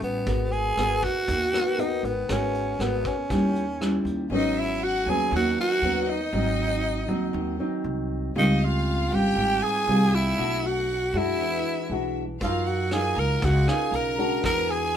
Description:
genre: bossa nova.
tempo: 119 BPM.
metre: 4/4.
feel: straight.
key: G# minor.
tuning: A4 = 444 Hz.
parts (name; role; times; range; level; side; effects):
growling tenor saxophone; melody; 0.0-15.0 s; B3 to A#4; -26 LUFS; right 2 dB; none.
nylon-string guitar; accompaniment; 0.0-15.0 s; G#2 to A#4; -27 LUFS; left 1 dB; none.
upright bass; bass; 0.0-15.0 s; G#1 to F#2; -29 LUFS; equal; none.
vintage brush drum kit; drums; 0.0-4.2, 12.4-15.0 s; hi-hat, kick drum, rim click; -34 LUFS; equal; none.
bright symphonic violin section; second line; 4.3-15.0 s; D#5 to A#5; -33 LUFS; left 1 dB; none.
room: moderate studio reverb, RT60 0.5 s.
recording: minimal, uncompressed stereo recording.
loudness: -22 LUFS.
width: side -9 dB against mid.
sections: 0.0-4.3 A section; 4.3-15.0 B section.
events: none.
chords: 0.3 G#m9; 3.3 D#7b9; 4.3 G#m7; 6.3 G#7; 8.4 C#maj7#11; 10.4 Bm7; 11.4 E9; 12.4 F#maj13; 14.4 E9.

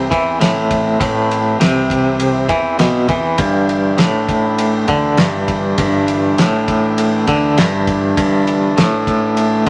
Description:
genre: psychedelic rock.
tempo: 100 BPM.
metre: 4/4.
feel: straight.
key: unclear.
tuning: A4 = 440 Hz.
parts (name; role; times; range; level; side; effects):
combo organ; sustained chords; 0.0-9.7 s; E3 to B4; -24 LUFS; equal; none.
twangy electric guitar; riff; 0.0-9.7 s; G2 to E3; -17 LUFS; equal; tremolo.
fuzz fingered electric bass; bass; 0.0-9.7 s; G1 to E2; -28 LUFS; equal; overdrive.
damped 70s drum kit; drums; 0.1-9.7 s; kick drum, ride cymbal, snare drum; -22 LUFS; equal; none.
room: wet studio reverb, RT60 0.7 s.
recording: none.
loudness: -15 LUFS.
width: mono.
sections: 0.0-9.7 A section.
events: none.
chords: 0.0 Amadd9; 3.4 G6.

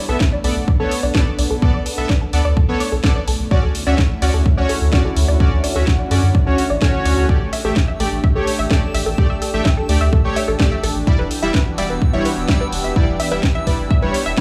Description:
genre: progressive house.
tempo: 127 BPM.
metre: 4/4.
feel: straight.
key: B minor.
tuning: A4 = 439 Hz.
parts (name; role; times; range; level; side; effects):
lush unison pad; sustained chords; 0.0-14.4 s; D3 to G4; -29 LUFS; equal; chorus, phaser, sidechain pumping.
unison pluck; arpeggios; 0.1-14.4 s; A4 to E5; -29 LUFS; equal; sidechain pumping, digital delay.
soft supersaw; stabs; 0.1-14.4 s; G3 to E5; -25 LUFS; equal; sidechain pumping, digital delay.
round analog bass; bass; 0.1-14.3 s; E1 to F#2; -22 LUFS; equal; sidechain pumping.
electronic kick drum; drums; 0.2-14.4 s; none; -19 LUFS; equal; overdrive.
house drum kit; drums; 0.2-14.4 s; hi-hat, snare drum; -27 LUFS; equal; overdrive, sidechain pumping on hats, sidechain pumping on toms.
backwards swelling texture; texture; 8.0-14.4 s; E6; -39 LUFS; equal; none.
room: digital ambience.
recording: small room ambience.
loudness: -17 LUFS.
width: mono.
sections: 0.0-14.4 A section.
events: filter sweep on synth pluck 0.0-14.4; filter sweep on analog synth pad 0.0-14.4.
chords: 0.0 Bm7; 3.5 Dmaj7; 7.3 A7sus4; 11.1 Em7.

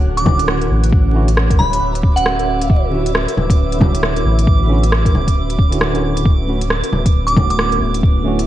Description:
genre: future garage.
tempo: 135 BPM.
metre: 4/4.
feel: swing 60% on 16ths.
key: unclear.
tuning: A4 = 440 Hz.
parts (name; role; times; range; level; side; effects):
granular cloud pad; sustained chords; 0.0-8.5 s; B3 to F#5; -24 LUFS; equal; built-in reverb, sidechain pumping.
soft dub sub bass; bass; 0.0-8.5 s; D1 to A1; -18 LUFS; equal; sidechain pumping.
drifting glass-harmonics texture; texture; 0.0-8.5 s; D6; -29 LUFS; right 6 dB; chorus, built-in reverb.
glassy synth bell; melody; 0.2-2.8, 7.3-7.7 s; F#5 to D6; -20 LUFS; right 2 dB; chorus, vintage 12-bit sampler grit, digital delay.
bright tine electric piano; accompaniment; 0.2-8.4 s; D3 to F#4; -22 LUFS; right 2 dB; auto-pan, sidechain pumping, digital delay.
organic electronic drum kit; drums; 0.2-8.5 s; bongos, hi-hat, rim click; -20 LUFS; left 1 dB; none.
electronic kick drum; drums; 0.3-8.1 s; none; -13 LUFS; equal; none.
room: light reverb.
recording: bright 1980s-style digital production, vinyl crackle.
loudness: -12 LUFS.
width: side -13 dB against mid.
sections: 0.0-8.5 A section.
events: none.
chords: 0.0 Dmaj9.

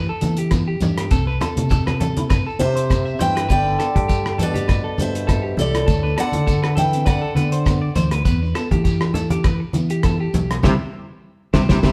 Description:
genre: highlife guitar band.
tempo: 101 BPM.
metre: 4/4.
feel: swing 54% on 16ths.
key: G major.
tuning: A4 = 440 Hz.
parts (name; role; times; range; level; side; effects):
clean electric guitar; arpeggios; 0.0-11.9 s; E4 to E5; -30 LUFS; equal; spring reverb.
fingered electric bass; bass; 0.0-11.9 s; G1 to E3; -25 LUFS; equal; none.
clean electric guitar; accompaniment; 0.2-11.9 s; E3 to E4; -31 LUFS; equal; none.
cloth-damped thuddy drum kit; drums; 0.2-11.9 s; hi-hat, kick drum, rim click, snare drum; -23 LUFS; equal; none.
congas; percussion; 0.2-11.9 s; none; -26 LUFS; equal; none.
shekere; percussion; 0.2-11.9 s; none; -32 LUFS; equal; none.
picked steel-string acoustic guitar; melody; 2.6-7.9 s; A4 to G5; -25 LUFS; equal; none.
clear trombone; second line; 2.6-11.9 s; A2 to E3; -30 LUFS; equal; none.
room: moderate stone room reverb, RT60 1.3 s.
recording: band playing live in one room.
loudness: -19 LUFS.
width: mono.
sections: 0.0-11.9 A section.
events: band accent 10.6-11.9.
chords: 0.0 Em; 1.1 C; 3.5 G; 5.9 D; 8.3 Em; 10.6 C.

